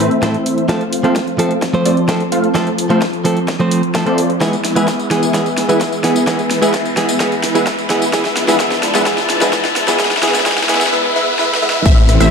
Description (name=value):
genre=EDM, festival progressive house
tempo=129 BPM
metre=4/4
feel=straight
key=unclear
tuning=A4 = 438 Hz
part: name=direct-recorded clean electric guitar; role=accompaniment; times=0.0-10.8 s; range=A2 to C5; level=-18 LUFS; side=right 2 dB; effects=sidechain pumping, tape echo
part: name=lush unison pad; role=sustained chords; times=0.0-12.3 s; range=C3 to B5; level=-21 LUFS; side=equal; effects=chorus, sidechain pumping
part: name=supersaw stab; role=riff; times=0.0-12.3 s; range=G#3 to A5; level=-17 LUFS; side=equal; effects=cassette tape, sidechain pumping, low-pass filter, tape echo
part: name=riser, swell and downlifter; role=sound effects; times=2.2-12.3 s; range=none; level=-24 LUFS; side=left 3 dB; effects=none
part: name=big-room dance drum kit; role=drums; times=0.1-12.3 s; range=crash cymbal, hi-hat, rim click, snare drum, tambourine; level=-21 LUFS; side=left 1 dB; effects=overdrive, high-pass filter on hats, high-pass filter on snare, high-pass filter on perc, high-pass filter on cymbals
part: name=electronic kick drum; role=drums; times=0.2-11.9 s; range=none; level=-19 LUFS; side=left 1 dB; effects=high-pass filter on kick, high-pass filter on room
part: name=wide unison pluck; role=arpeggios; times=11.9-12.3 s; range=E5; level=-19 LUFS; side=equal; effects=sidechain pumping
part: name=wide detuned saw bass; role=bass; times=11.9-12.3 s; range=A1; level=-12 LUFS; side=left 1 dB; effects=chorus, sidechain pumping
room=moderate digital room reverb, RT60 1.0 s, digital ambience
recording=dark, warm production, high-pass filter, faint mains hum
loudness=-12 LUFS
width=side -6 dB against mid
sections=0.0-11.9 A section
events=build-up 0.0-11.9; drum fill 0.0-10.9, 11.4-11.9; filter sweep on supersaw synth 0.0-11.9; filter sweep on analog synth pad 0.0-11.9; filter sweep 0.0-11.9; riser 2.2-11.9; swell 10.9-11.9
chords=0.0 Am; 0.7 F; 4.4 E; 8.1 Dm